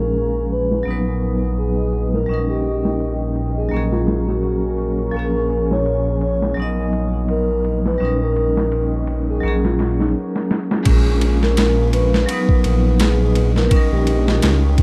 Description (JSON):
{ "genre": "trip hop", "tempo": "84 BPM", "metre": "4/4", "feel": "swing 56% on 16ths", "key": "Bb phrygian", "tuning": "A4 = 441 Hz", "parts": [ { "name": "pure breathy sine lead", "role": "melody", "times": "0.0-14.6 s", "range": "Eb4 to Db5", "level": "-26 LUFS", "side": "equal", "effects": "chorus, cassette tape, tape echo" }, { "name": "vibraphone with hard mallets", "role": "accompaniment", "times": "0.0-14.8 s", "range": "F3 to D#5", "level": "-25 LUFS", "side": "equal", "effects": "harmonic tremolo" }, { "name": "deep dark ambient pad", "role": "sustained chords", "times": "0.2-14.8 s", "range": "B3 to D#6", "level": "-34 LUFS", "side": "equal", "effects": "chorus, built-in reverb, vintage 12-bit sampler grit" }, { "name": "dark detuned saw bass", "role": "bass", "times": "0.0-14.8 s", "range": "Bb1 to Db2", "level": "-22 LUFS", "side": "equal", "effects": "none" }, { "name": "boom bap sampler-style drum kit", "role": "drums", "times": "0.0-14.8 s", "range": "crash cymbal, hi-hat, kick drum, ride cymbal, snare drum", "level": "-22 LUFS", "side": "equal", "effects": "low-pass filter on cymbals, low-pass filter on snare, low-pass filter on kick, low-pass filter on hats" } ], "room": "digital ambience", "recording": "dark, warm production", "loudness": "-18 LUFS", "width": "mono", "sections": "0.0-10.9 A section; 10.9-14.8 B section", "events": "break 10.1-10.9; drum fill 10.3-10.9", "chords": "0.0 Bbm7; 0.9 B/Bb; 2.3 Eb7/Bb; 3.7 Gbadd9/Bb; 5.1 Bbm7; 6.6 B/Bb; 8.0 Eb7/Bb; 9.4 Gbadd9/Bb; 10.9 Bbm7; 12.3 B/Bb; 13.7 Eb7/Bb" }